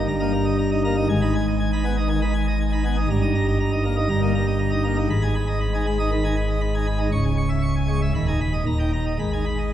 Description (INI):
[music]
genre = classical, organ toccata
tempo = 119 BPM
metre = 4/4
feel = straight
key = G# minor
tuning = A4 = 440 Hz
[part]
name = pipe organ, plenum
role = solo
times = 0.0-9.7 s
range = C#1 to C#6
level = -20 LUFS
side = equal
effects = none
[sound]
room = wet church reverb, RT60 2.3 s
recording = heard from further back in the room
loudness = -20 LUFS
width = side -11 dB against mid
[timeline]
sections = 0.0-9.7 A section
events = none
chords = 0.0 D#/G; 1.1 G#m; 3.1 D#/G; 5.1 G#m; 7.1 C#m; 8.1 G#m/D#; 8.7 D#; 9.2 G#m